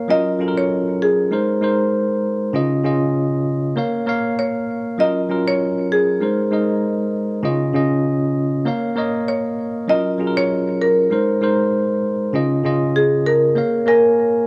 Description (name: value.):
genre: afrobeats.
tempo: 98 BPM.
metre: 4/4.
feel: swing 55% on 16ths.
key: Bb minor.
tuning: A4 = 441 Hz.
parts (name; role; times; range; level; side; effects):
marimba with medium mallets; melody; 0.0-14.5 s; Ab4 to Eb5; -21 LUFS; equal; none.
bell-like tine electric piano; accompaniment; 0.0-14.5 s; Db3 to Ab5; -21 LUFS; equal; none.
room: light reverb.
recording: small room ambience.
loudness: -19 LUFS.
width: mono.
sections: 0.0-13.6 A section.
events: none.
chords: 0.1 Gbmaj7; 1.3 Abadd9; 2.5 Dbadd9; 3.8 Bbm; 5.0 Gbmaj7; 6.2 Abadd9; 7.4 Dbadd9; 8.7 Bbm; 9.9 Gbmaj7; 11.1 Abadd9; 12.3 Dbadd9; 13.6 Bbm.